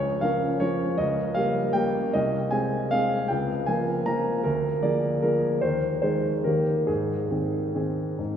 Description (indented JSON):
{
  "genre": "classical, piano waltz",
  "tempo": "134-164 BPM",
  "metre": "3/4",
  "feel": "rubato",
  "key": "Ab major",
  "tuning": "A4 = 441 Hz",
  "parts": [
    { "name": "clear grand piano", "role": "solo", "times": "0.0-8.4 s", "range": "C2 to Bb5", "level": "-23 LUFS", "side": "equal", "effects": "none" }
  ],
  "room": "wet cathedral reverb, RT60 6.5 s",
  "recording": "recorded in a church or concert hall",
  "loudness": "-23 LUFS",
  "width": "side -8 dB against mid",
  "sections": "0.0-8.4 A section",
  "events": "none",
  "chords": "0.0 Bbm/Db; 1.0 Eb7/Db; 2.1 Ab/C; 3.3 Bbm/Db; 4.5 Bb7/D; 5.6 Ab/Eb; 6.4 Eb; 6.9 Ab"
}